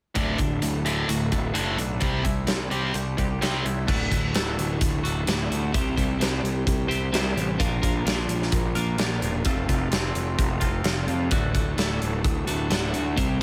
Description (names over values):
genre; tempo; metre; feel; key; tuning
quiet-loud alternative rock; 129 BPM; 4/4; straight; unclear; A4 = 440 Hz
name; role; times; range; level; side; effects
distorted electric guitar; riff; 0.1-3.9 s; D2 to C4; -30 LUFS; equal; overdrive
twelve-string electric guitar; arpeggios; 0.2-13.4 s; D2 to C5; -31 LUFS; equal; phaser
fuzz picked electric bass; bass; 0.2-13.4 s; D1 to F2; -30 LUFS; equal; overdrive
big rock drum kit; drums; 0.2-13.3 s; crash cymbal, hi-hat, kick drum, snare drum; -29 LUFS; equal; none
room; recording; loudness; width
light reverb; none; -25 LUFS; mono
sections
0.2-3.9 A section; 3.9-13.4 B section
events
none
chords
0.2 D; 2.0 C; 3.9 D; 5.7 C; 7.6 Bb; 9.5 F; 11.3 D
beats
| 0.17 0.63 1.09 1.56 | 2.02 2.49 2.95 3.41 | 3.88 4.34 4.81 5.27 | 5.73 6.20 6.66 7.13 | 7.59 8.06 8.52 8.99 | 9.45 9.92 10.38 10.85 | 11.31 11.78 12.24 12.71 | 13.17